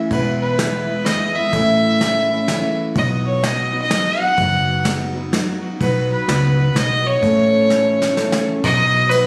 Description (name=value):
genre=honky-tonk and classic country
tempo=126 BPM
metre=3/4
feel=swing 63% on 8ths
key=B mixolydian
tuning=A4 = 441 Hz
part: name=picked steel-string acoustic guitar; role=accompaniment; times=0.0-9.3 s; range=E2 to A4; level=-23 LUFS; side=equal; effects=none
part: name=clear fiddle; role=melody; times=0.1-9.3 s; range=B4 to F#5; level=-20 LUFS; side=equal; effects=none
part: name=vintage muted fingered electric bass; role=bass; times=0.1-9.3 s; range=E1 to C#2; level=-25 LUFS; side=equal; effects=none
part: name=soft brush drum kit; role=drums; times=0.1-9.3 s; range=kick drum, ride cymbal, snare drum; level=-27 LUFS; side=equal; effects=none
room=light reverb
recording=recorded on a phone in the room, studio reverb, compression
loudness=-18 LUFS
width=mono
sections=0.0-8.6 A section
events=drum fill 7.7-8.6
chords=0.1 E; 1.5 A; 3.0 B; 7.2 A; 8.6 B